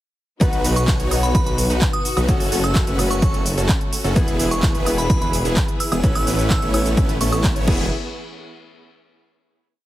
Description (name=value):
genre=EDM, festival progressive house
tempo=128 BPM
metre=4/4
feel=straight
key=E major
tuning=A4 = 439 Hz
part: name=fingerpicked swing-style acoustic guitar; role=accompaniment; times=0.4-7.9 s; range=A2 to B4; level=-27 LUFS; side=left 2 dB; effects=sidechain pumping
part: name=rich studio string section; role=sustained chords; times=0.4-7.9 s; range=E3 to E5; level=-30 LUFS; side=left 1 dB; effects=sidechain pumping
part: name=supersaw chords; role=riff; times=0.4-7.9 s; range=A3 to C#5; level=-26 LUFS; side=right 1 dB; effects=sidechain pumping, digital delay
part: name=detuned saw bass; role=bass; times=0.4-7.9 s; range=E1 to B1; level=-23 LUFS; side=equal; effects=tube saturation, sidechain pumping
part: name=big-room dance drum kit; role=drums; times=0.4-7.8 s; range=crash cymbal, handclaps, hi-hat, shaker, woodblock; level=-26 LUFS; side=right 1 dB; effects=none
part: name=electronic kick drum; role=drums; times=0.4-7.8 s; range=none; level=-20 LUFS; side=equal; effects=overdrive
part: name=glassy synth bell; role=melody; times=0.8-7.4 s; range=B5 to E6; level=-28 LUFS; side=right 1 dB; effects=chorus, digital delay
room=little or no reverb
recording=heavily compressed radio sound, multiband compression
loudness=-16 LUFS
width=side -14 dB against mid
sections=0.4-7.9 drop; 7.9-9.8 final hit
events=drop 0.4-7.9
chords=0.4 B; 2.3 F#m; 4.2 E; 6.0 Aadd9; 7.7 E; 7.9 N.C.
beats=| 0.41 0.88 1.35 1.82 | 2.29 2.75 3.22 3.69 | 4.16 4.63 5.10 5.57 | 6.04 6.50 6.97 7.44